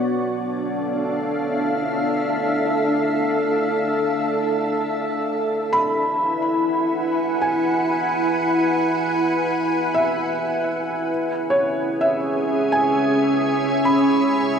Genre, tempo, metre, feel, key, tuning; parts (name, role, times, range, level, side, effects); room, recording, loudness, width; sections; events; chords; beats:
ambient; free time; A4 = 440 Hz
soft additive organ-like pad; sustained chords; 0.0-14.6 s; B3 to G#5; -19 LUFS; equal; ensemble chorus, built-in reverb
felt-muted upright piano; arpeggios; 5.7-14.6 s; C#5 to B5; -23 LUFS; equal; tape echo
wet cathedral reverb, RT60 5.2 s; in a vast, echoing space, cassette tape; -18 LUFS; side -7 dB against mid
0.0-14.6 A section
0.0 Dm6; 5.6 Eadd9; 11.1 C#m7
free time